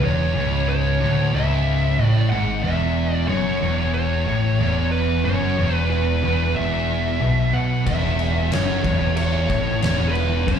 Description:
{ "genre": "stoner and doom metal", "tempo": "92 BPM", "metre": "4/4", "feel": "straight", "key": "unclear", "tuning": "A4 = 440 Hz", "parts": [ { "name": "fuzz lead guitar", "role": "melody", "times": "0.0-10.6 s", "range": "G#4 to F#5", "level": "-25 LUFS", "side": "equal", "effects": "distortion, ping-pong delay" }, { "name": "thick fuzz guitar", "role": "riff", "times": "0.0-10.6 s", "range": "C#2 to B2", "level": "-25 LUFS", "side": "left 7 dB", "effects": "distortion" }, { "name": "thick fuzz guitar", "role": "riff", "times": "0.0-10.6 s", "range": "C#2 to B2", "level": "-26 LUFS", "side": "right 7 dB", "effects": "distortion" }, { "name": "tight distorted guitar", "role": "riff", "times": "0.0-10.6 s", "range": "C#2 to B2", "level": "-27 LUFS", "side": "right 1 dB", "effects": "distortion, slapback echo" }, { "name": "overdriven picked electric bass", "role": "bass", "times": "0.0-10.6 s", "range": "C#1 to B1", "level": "-23 LUFS", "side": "equal", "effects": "none" }, { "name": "oversized low-tuned drum kit", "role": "drums", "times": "7.9-10.6 s", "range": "crash cymbal, kick drum, snare drum", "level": "-25 LUFS", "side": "equal", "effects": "none" } ], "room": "small room ambience", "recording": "live gig heard through the venue's PA, club reverb", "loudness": "-18 LUFS", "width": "side -8 dB against mid", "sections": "0.0-10.6 A section", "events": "none", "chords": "0.0 C#m; 2.6 E5", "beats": "| 0.02 0.68 1.33 1.98 | 2.64 3.29 3.94 4.60 | 5.25 5.91 6.56 7.21 | 7.87 8.52 9.18 9.83 | 10.48" }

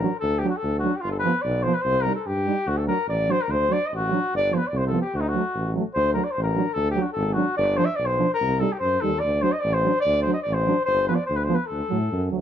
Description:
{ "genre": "balkan folk, Balkan brass band", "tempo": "146 BPM", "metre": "2/4", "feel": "swing 55% on 16ths", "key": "unclear", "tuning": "A4 = 438 Hz", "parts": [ { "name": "warm flugelhorn", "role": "melody", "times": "0.0-12.3 s", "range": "Eb4 to E5", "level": "-24 LUFS", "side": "left 2 dB", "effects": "plate reverb" }, { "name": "mellow French horn", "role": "accompaniment", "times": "0.0-12.4 s", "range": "A3 to Eb4", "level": "-29 LUFS", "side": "left 3 dB", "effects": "none" }, { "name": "warm euphonium", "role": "accompaniment", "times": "0.0-12.4 s", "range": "F3 to G3", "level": "-27 LUFS", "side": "right 8 dB", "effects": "none" }, { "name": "clear tuba", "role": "bass", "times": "0.0-12.4 s", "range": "G1 to A2", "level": "-26 LUFS", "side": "equal", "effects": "none" } ], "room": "light reverb", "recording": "dark, warm production", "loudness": "-21 LUFS", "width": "side -9 dB against mid", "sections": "0.0-6.0 A section; 6.0-12.4 A section", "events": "none", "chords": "0.0 D; 1.0 G7; 1.9 Cm; 2.7 D; 4.3 G7; 5.1 D; 7.6 G7; 8.4 Cm; 9.2 D; 10.9 G7; 11.7 D", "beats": "| 0.22 0.63 | 1.03 1.44 | 1.85 2.26 | 2.67 3.08 | 3.49 3.90 | 4.31 4.72 | 5.13 5.54 | 5.95 6.36 | 6.77 7.18 | 7.59 8.00 | 8.41 8.82 | 9.23 9.64 | 10.05 10.46 | 10.87 11.28 | 11.70 12.11" }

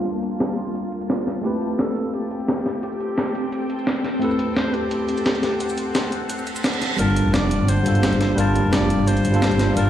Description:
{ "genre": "liquid drum and bass", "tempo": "173 BPM", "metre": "4/4", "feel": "straight", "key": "G dorian", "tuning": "A4 = 440 Hz", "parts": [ { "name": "bell-like tine electric piano", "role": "accompaniment", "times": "0.0-9.9 s", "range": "G3 to A5", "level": "-24 LUFS", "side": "equal", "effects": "medium stereo tremolo, low-pass filter, digital delay" }, { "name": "shimmering ambient pad", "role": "sustained chords", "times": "0.0-9.9 s", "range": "Bb3 to A5", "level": "-28 LUFS", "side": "left 1 dB", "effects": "chorus, built-in reverb, phaser" }, { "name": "breakbeat sampler-style drum kit", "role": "drums", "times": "0.1-9.8 s", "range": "hi-hat, shaker, snare drum", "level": "-24 LUFS", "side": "equal", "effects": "none" }, { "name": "mellow alto saxophone", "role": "melody", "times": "1.4-9.9 s", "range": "G4 to D5", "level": "-28 LUFS", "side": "equal", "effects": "low-pass filter, dub echo" }, { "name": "reverse cymbal and riser", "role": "sound effects", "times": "6.4-9.9 s", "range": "none", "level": "-32 LUFS", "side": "right 4 dB", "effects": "none" }, { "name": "upright bass", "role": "bass", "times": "7.0-9.9 s", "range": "F1 to G1", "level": "-20 LUFS", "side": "equal", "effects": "none" } ], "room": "light reverb, digital ambience", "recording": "played on a big sound system in a bare room, large studio reverb, low-pass filter, lossy compression artefacts", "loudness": "-19 LUFS", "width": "side -11 dB against mid", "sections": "0.0-7.0 A section; 7.0-9.9 B section", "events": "filter sweep on tine electric piano 0.0-7.0; filter sweep on ambient pad 0.0-7.0, 7.0-9.9; filter sweep 0.0-7.0; reverse cymbal 6.4-7.0; build-up 7.0-9.9", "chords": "0.0 Gm7; 1.4 Am7; 7.0 Gm7", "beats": "| 0.06 0.40 0.75 1.10 | 1.44 1.79 2.14 2.48 | 2.83 3.18 3.52 3.87 | 4.22 4.57 4.91 5.26 | 5.61 5.95 6.30 6.65 | 6.99 7.34 7.69 8.03 | 8.38 8.73 9.07 9.42 | 9.77" }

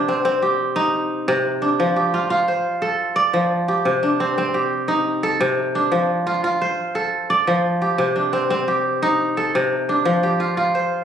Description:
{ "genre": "west african traditional", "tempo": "116 BPM (dotted quarters)", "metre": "12/8", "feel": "straight", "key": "C dorian", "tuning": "A4 = 440 Hz", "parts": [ { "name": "kora", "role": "solo", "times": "0.0-11.0 s", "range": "C3 to D5", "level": "-17 LUFS", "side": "equal", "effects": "none" } ], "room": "light reverb", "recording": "recorded on a phone in the room, studio reverb, compression", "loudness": "-17 LUFS", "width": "side -8 dB against mid", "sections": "0.0-11.0 A section", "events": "none", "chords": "0.0 Cm; 1.8 F; 3.9 Cm; 5.9 F; 8.0 Cm; 10.1 F", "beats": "0.24 0.76 1.27 | 1.79 2.30 2.82 3.33 | 3.85 4.37 4.88 5.40 | 5.92 6.43 6.95 7.46 | 7.98 8.50 9.02 9.53 | 10.05 10.57" }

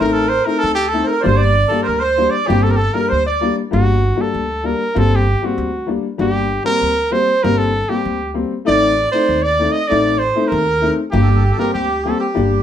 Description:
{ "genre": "klezmer", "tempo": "97 BPM", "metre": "2/4", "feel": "straight", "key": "G harmonic minor", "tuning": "A4 = 440 Hz", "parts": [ { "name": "clear cornet", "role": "melody", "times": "0.0-12.6 s", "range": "F#4 to Eb5", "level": "-18 LUFS", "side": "right 1 dB", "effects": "none" }, { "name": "accordion", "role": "second line", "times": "0.0-3.6, 8.7-12.6 s", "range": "G4 to Eb5", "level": "-22 LUFS", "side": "right 4 dB", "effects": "none" }, { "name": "warm upright piano", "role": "accompaniment", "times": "0.0-12.6 s", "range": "G3 to Eb4", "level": "-19 LUFS", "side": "left 5 dB", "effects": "none" }, { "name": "upright bass", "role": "bass", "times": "0.0-12.6 s", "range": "G1 to Eb2", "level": "-19 LUFS", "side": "right 1 dB", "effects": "none" } ], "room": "moderate studio reverb, RT60 0.6 s", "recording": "band playing live in one room", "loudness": "-14 LUFS", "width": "side -10 dB against mid", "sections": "0.0-3.7 A section; 3.7-12.6 B section", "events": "cornet solo 0.0-3.7", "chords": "0.0 Adim; 1.3 Gm; 8.7 Adim; 11.1 Gm", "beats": "| 0.01 0.63 | 1.25 1.88 | 2.50 3.12 | 3.73 4.35 | 4.97 5.59 | 6.21 6.83 | 7.44 8.06 | 8.68 9.29 | 9.91 10.52 | 11.14 11.75 | 12.36" }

